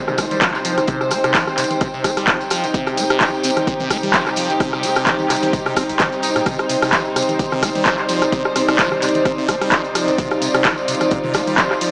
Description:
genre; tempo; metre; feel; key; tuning
acid house; 129 BPM; 4/4; swing 55% on 16ths; C minor; A4 = 443 Hz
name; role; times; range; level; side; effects
dark studio string section; sustained chords; 0.0-11.9 s; C3 to C5; -26 LUFS; equal; sidechain pumping
liquid acid bass; riff; 0.0-11.9 s; C2 to Eb4; -29 LUFS; equal; phaser, dub echo
downlifter; sound effects; 0.0-2.7 s; none; -37 LUFS; equal; none
airy breathy pad; texture; 0.0-11.9 s; Eb4 to G5; -24 LUFS; equal; chorus, sidechain pumping
punchy analog drum machine; drums; 0.1-11.9 s; congas, handclaps, hi-hat, rim click; -22 LUFS; equal; none
tambourine; percussion; 0.1-11.9 s; none; -31 LUFS; equal; none
deep reggae drum kit; drums; 0.2-11.9 s; hi-hat, snare drum; -37 LUFS; equal; none
electronic kick drum; drums; 0.2-11.7 s; none; -27 LUFS; equal; none
room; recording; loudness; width
moderate lush hall reverb, RT60 2.1 s; small speaker sound; -18 LUFS; mono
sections
0.0-11.9 A section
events
none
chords
0.0 Cm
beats
0.42 | 0.88 1.35 1.81 2.28 | 2.74 3.21 3.67 4.14 | 4.60 5.07 5.53 6.00 | 6.46 6.93 7.39 7.86 | 8.32 8.79 9.25 9.72 | 10.18 10.65 11.12 11.58

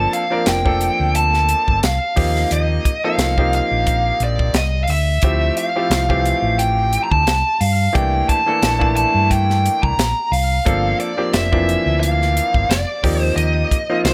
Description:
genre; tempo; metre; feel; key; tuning
electric jazz fusion; 88 BPM; 4/4; swing 55% on 16ths; unclear; A4 = 440 Hz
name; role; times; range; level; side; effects
bluesy overdriven lead guitar; melody; 0.0-14.1 s; C5 to Bb5; -21 LUFS; equal; distortion
bright grand piano; accompaniment; 0.0-14.1 s; E3 to Bb4; -25 LUFS; equal; none
fingered electric bass; bass; 0.0-14.1 s; F1 to G2; -22 LUFS; equal; none
tight funk drum kit; drums; 0.1-14.1 s; hi-hat, kick drum, snare drum; -23 LUFS; equal; none
room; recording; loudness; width
light reverb; none; -17 LUFS; mono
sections
0.0-14.1 A section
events
none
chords
0.0 Gm11; 2.2 Eb69; 5.2 Dm11; 7.9 C13; 10.7 Gm11; 13.0 Eb69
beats
0.47 1.15 1.83 | 2.51 3.19 3.87 4.55 | 5.23 5.91 6.59 7.27 | 7.95 8.62 9.30 9.98 | 10.66 11.34 12.01 12.69 | 13.37 14.05

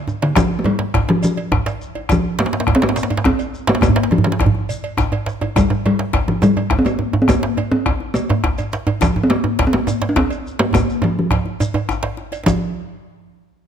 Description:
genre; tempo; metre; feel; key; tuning
west african traditional, West African drum ensemble; 139 BPM (dotted quarters); 12/8; straight; Bb major pentatonic; A4 = 439 Hz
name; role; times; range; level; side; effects
talking drum; melody; 0.0-12.6 s; D3 to D4; -18 LUFS; left 1 dB; none
djembe; percussion; 0.1-12.6 s; none; -26 LUFS; left 5 dB; none
djembe; percussion; 0.1-12.6 s; none; -20 LUFS; right 3 dB; none
shekere; percussion; 0.1-12.6 s; none; -32 LUFS; left 3 dB; none
cowbell; percussion; 0.2-12.6 s; none; -30 LUFS; right 8 dB; none
bombo; percussion; 0.4-12.6 s; none; -22 LUFS; equal; none
room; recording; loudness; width
light reverb; close, detailed microphones; -15 LUFS; side -8 dB against mid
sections
0.0-12.5 A section; 12.5-13.7 B section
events
drum fill 10.7-12.5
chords
none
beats
| 0.36 0.80 1.23 1.66 | 2.09 2.53 2.96 3.39 | 3.83 4.26 4.69 5.12 | 5.56 5.99 6.42 6.85 | 7.29 7.72 8.15 8.58 | 9.02 9.45 9.88 10.31 | 10.74 11.17 11.61 12.04 | 12.47

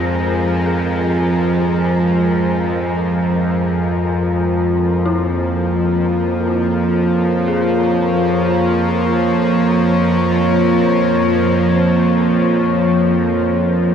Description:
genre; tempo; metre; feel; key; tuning
dark ambient drone; free time; none; none; unclear; A4 = 440 Hz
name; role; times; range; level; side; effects
deep dark ambient pad; sustained chords; 0.0-13.9 s; F3 to Ab5; -17 LUFS; right 1 dB; chorus, built-in reverb
dark detuned synth bell; arpeggios; 0.0-13.9 s; E4 to Ab4; -30 LUFS; left 4 dB; none
bowed-like drone; drone; 0.0-13.9 s; F2 to F3; -16 LUFS; equal; built-in reverb
wind-like tuned noise texture; texture; 0.0-13.9 s; Bb4; -28 LUFS; equal; built-in reverb
room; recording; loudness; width
wet cathedral reverb, RT60 5.9 s; in a vast, echoing space; -14 LUFS; side -8 dB against mid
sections
0.0-13.9 A section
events
fade-out on synth texture 0.0-13.9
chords
0.0 Fm; 3.4 Bbm/F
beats
free time

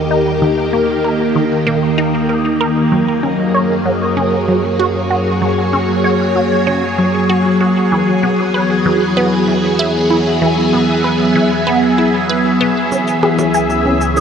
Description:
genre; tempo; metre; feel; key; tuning
ambient, sequencer-driven space music; 96 BPM; 4/4; straight; unclear; A4 = 440 Hz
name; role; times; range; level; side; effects
phased string machine; sustained chords; 0.0-14.2 s; D#3 to E5; -13 LUFS; equal; ensemble chorus, phaser
analog drone; bass; 0.0-14.2 s; C#2 to F#2; -24 LUFS; equal; chorus
resonant blip pluck; riff; 0.1-14.2 s; D#3 to G#5; -18 LUFS; right 1 dB; phaser, analog delay
shaker and percussion blips; percussion; 12.9-14.2 s; none; -24 LUFS; right 3 dB; analog delay
room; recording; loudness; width
wet huge ambient reverb, RT60 7.9 s; in a vast, echoing space, cassette tape; -12 LUFS; side -7 dB against mid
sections
0.0-12.9 A section; 12.9-14.2 B section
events
fade-in on synth drone 0.0-12.9; filter sweep on synth arpeggio sound 12.9-14.2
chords
0.0 D#; 2.9 F#add9; 7.9 Eadd9; 12.9 C#m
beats
| 0.42 1.04 1.67 2.29 | 2.92 3.54 4.17 4.79 | 5.42 6.04 6.67 7.29 | 7.92 8.54 9.17 9.79 | 10.42 11.04 11.67 12.29 | 12.92 13.54 14.17

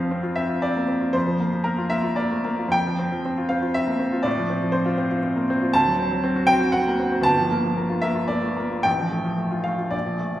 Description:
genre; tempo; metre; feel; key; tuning
classical, romantic character piece for solo piano; 102-124 BPM; 3/4; rubato; F major; A4 = 441 Hz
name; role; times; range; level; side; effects
bright baby grand piano; solo; 0.0-10.4 s; G1 to A5; -20 LUFS; equal; none
room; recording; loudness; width
wet recital hall reverb, RT60 1.7 s; heard from further back in the room; -20 LUFS; side -13 dB against mid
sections
0.0-10.4 A section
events
none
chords
0.0 F5; 1.1 Bb/F; 2.7 F5; 4.3 F/A; 5.7 D7; 7.2 Gm7; 8.9 F/A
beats
0.10 0.63 | 1.14 1.66 2.17 | 2.73 3.25 3.76 | 4.26 4.74 5.24 | 5.75 6.24 6.74 | 7.25 7.78 8.29 | 8.86 9.39 9.93

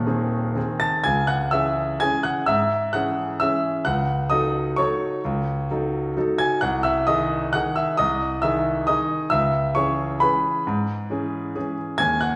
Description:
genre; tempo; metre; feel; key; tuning
classical, piano waltz; 119-140 BPM; 3/4; rubato; C# minor; A4 = 441 Hz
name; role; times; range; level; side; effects
clear grand piano; solo; 0.0-12.4 s; D#1 to A6; -23 LUFS; equal; none
room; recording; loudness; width
wet recital hall reverb, RT60 1.4 s; recorded in a church or concert hall; -23 LUFS; mono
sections
0.0-1.0 A section; 1.0-12.4 B section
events
none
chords
0.0 G#; 1.0 C#m; 3.9 D#m7b5/C#; 6.6 G#/B#; 9.3 C#m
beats
0.06 0.56 | 1.05 1.52 2.00 | 2.47 2.93 3.40 | 3.86 4.31 4.78 | 5.24 5.69 6.16 | 6.61 7.07 7.54 | 7.99 8.43 8.88 | 9.32 9.76 10.21 | 10.67 11.11 11.55 | 12.00

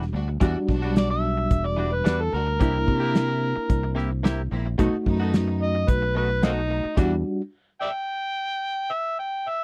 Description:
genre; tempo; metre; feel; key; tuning
straight-eighth soul blues; 110 BPM; 4/4; straight; E minor; A4 = 440 Hz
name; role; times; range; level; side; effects
mellow reed electric piano; accompaniment; 0.0-7.4 s; G3 to F#4; -31 LUFS; equal; tremolo
direct-recorded clean electric guitar; stabs; 0.0-7.2 s; B2 to G4; -34 LUFS; equal; subtle chorus
fingered electric bass; bass; 0.0-7.2 s; E1 to C3; -28 LUFS; equal; none
warm soul drum kit; drums; 0.0-7.1 s; crash cymbal, hi-hat, kick drum, snare drum; -25 LUFS; equal; none
rich chamber string section; sustained chords; 0.1-7.1 s; G3 to F#4; -38 LUFS; equal; none
overdriven harmonica; melody; 1.0-9.6 s; A#3 to G5; -29 LUFS; equal; none
room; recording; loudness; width
little or no reverb; dry, close 1970s-style studio recording; -24 LUFS; mono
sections
0.0-9.6 A section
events
stop 7.0-9.6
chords
0.0 Em9; 2.6 C7; 4.8 B7; 7.0 Em9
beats
| 0.41 0.95 1.50 2.05 | 2.60 3.14 3.69 4.24 | 4.79 5.33 5.88 6.43 | 6.97 7.52 8.07 8.62 | 9.16

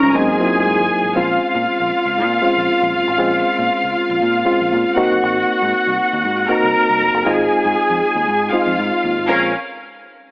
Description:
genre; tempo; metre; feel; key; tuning
disco; 118 BPM; 4/4; straight; Bb minor; A4 = 440 Hz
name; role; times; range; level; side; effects
vibraphone with soft mallets; melody; 0.0-0.9 s; C4 to Db4; -18 LUFS; equal; none
bright studio string section; second line; 0.0-9.5 s; Db4 to Bb5; -16 LUFS; equal; none
mellow reed electric piano; accompaniment; 0.0-9.5 s; F3 to Gb4; -18 LUFS; equal; fast tremolo
fingered electric bass; bass; 0.0-9.5 s; F1 to Bb2; -26 LUFS; equal; none
room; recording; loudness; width
moderate plate reverb, RT60 2.6 s; telephone sound; -14 LUFS; side -26 dB against mid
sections
0.0-1.2 A section; 1.2-9.3 B section; 9.3-10.3 C section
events
none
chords
0.1 Ab7; 1.2 Bbm7; 5.0 Ab7; 7.3 Fm7/Ab; 9.3 Bbm7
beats
0.14 0.65 | 1.16 1.67 2.17 2.68 | 3.19 3.70 4.21 4.72 | 5.22 5.73 6.24 6.75 | 7.26 7.77 8.28 8.78 | 9.29

